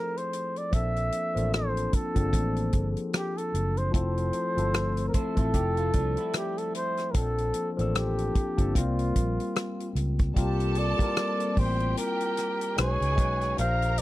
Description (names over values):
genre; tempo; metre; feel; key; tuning
lush 1970s-style soul; 75 BPM; 4/4; swing 58% on 16ths; F major; A4 = 440 Hz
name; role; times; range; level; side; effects
breathy flugelhorn; melody; 0.0-14.0 s; F4 to F5; -30 LUFS; right 1 dB; none
barky tine electric piano; accompaniment; 0.0-14.0 s; F3 to C5; -32 LUFS; left 3 dB; phaser
warm soul drum kit; drums; 0.2-14.0 s; hi-hat, kick drum, rim click; -28 LUFS; equal; none
vintage muted fingered electric bass; bass; 0.7-14.0 s; F1 to Db2; -28 LUFS; equal; none
electric guitar through a small old amp; riff; 5.1-7.1 s; F3 to C5; -37 LUFS; right 7 dB; analog chorus
warm studio violin section; second line; 10.4-14.0 s; G4 to Bb5; -36 LUFS; right 1 dB; none
room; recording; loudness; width
small room reverb; dry, close 1970s-style studio recording; -25 LUFS; side -16 dB against mid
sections
0.0-10.4 A section; 10.4-14.0 B section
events
none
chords
0.0 Fmaj7; 0.7 Bbmaj9; 3.9 Fmaj7; 7.1 Bbmaj9; 8.8 C7sus4; 12.8 B69